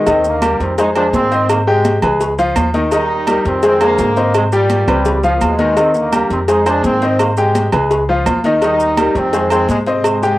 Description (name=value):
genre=latin, salsa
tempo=168 BPM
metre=4/4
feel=straight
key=Eb major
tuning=A4 = 440 Hz
part: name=brilliant trombone section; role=melody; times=0.0-10.4 s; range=Ab2 to Eb4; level=-18 LUFS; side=right 1 dB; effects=cassette tape
part: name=bright upright piano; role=accompaniment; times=0.0-10.4 s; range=Eb3 to G5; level=-15 LUFS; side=left 2 dB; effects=none
part: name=upright bass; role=bass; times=0.1-10.4 s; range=Db2 to Ab2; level=-21 LUFS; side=equal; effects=none
part: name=agogo bells and timbales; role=percussion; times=0.1-10.2 s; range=none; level=-21 LUFS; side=right 4 dB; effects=none
part: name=congas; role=percussion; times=0.1-10.4 s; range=none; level=-23 LUFS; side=left 1 dB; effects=none
part: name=cowbell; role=percussion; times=0.1-10.2 s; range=none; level=-22 LUFS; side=left 2 dB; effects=none
part: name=maracas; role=percussion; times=0.1-10.4 s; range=none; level=-36 LUFS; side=right 6 dB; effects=none
room=moderate studio reverb, RT60 0.5 s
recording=home recording on cassette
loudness=-12 LUFS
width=side -16 dB against mid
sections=0.1-10.4 A section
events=none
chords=0.1 Eb; 0.8 Fm7; 1.5 Abmaj7; 2.2 Db7; 2.9 Eb; 3.6 Fm7; 4.3 Abmaj7; 5.1 Db7; 5.8 Eb; 6.5 Fm7; 7.2 Abmaj7; 7.9 Db7; 8.6 Eb; 9.3 Fm7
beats=| 0.07 0.42 0.78 1.14 | 1.49 1.85 2.21 2.56 | 2.92 3.27 3.63 3.99 | 4.34 4.70 5.06 5.41 | 5.77 6.13 6.48 6.84 | 7.20 7.55 7.91 8.27 | 8.62 8.98 9.33 9.69 | 10.05